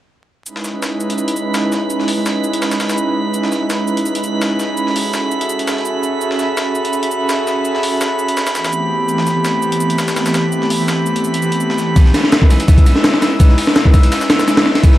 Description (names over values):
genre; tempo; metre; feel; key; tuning
drum and bass, jungle; 167 BPM; 4/4; straight; C# minor; A4 = 440 Hz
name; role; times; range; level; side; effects
airy breathy pad; sustained chords; 0.5-15.0 s; E3 to E5; -17 LUFS; right 1 dB; chorus
breakbeat sampler-style drum kit; drums; 0.5-15.0 s; hi-hat, shaker, snare drum; -23 LUFS; left 1 dB; high-pass filter on perc, high-pass filter on snare, high-pass filter on hats
drifting glass-harmonics texture; texture; 0.7-15.0 s; B5 to E6; -22 LUFS; right 2 dB; chorus, built-in reverb
breakbeat sampler-style drum kit; drums; 12.0-14.9 s; kick drum, ride cymbal, snare drum; -9 LUFS; equal; none
room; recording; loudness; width
light reverb; vinyl crackle; -13 LUFS; side -14 dB against mid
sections
0.5-15.0 A section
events
filter sweep on analog synth pad 0.5-15.0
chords
0.5 C#m9; 4.8 F#m9; 8.4 Am9; 12.0 C#m9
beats
| 0.47 0.82 1.18 1.54 | 1.90 2.26 2.62 2.98 | 3.34 3.70 4.06 4.42 | 4.78 5.14 5.50 5.85 | 6.21 6.57 6.93 7.29 | 7.65 8.01 8.37 8.73 | 9.09 9.45 9.81 10.16 | 10.53 10.88 11.24 11.60 | 11.96 12.32 12.68 13.04 | 13.40 13.76 14.12 14.48 | 14.84